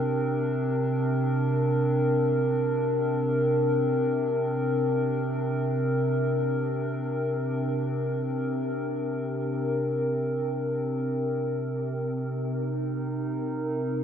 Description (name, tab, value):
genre	ambient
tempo	free time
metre	none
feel	none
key	unclear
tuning	A4 = 440 Hz
part	warbly tape-like pad	solo	0.0-14.0 s	C3 to Bb4	-25 LUFS	equal	chorus, built-in reverb, tape echo
room	wet huge ambient reverb, RT60 8.4 s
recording	none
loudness	-25 LUFS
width	side -8 dB against mid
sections	0.0-11.0 A section; 11.0-14.0 B section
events	none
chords	0.0 Bb/C; 11.0 Cm7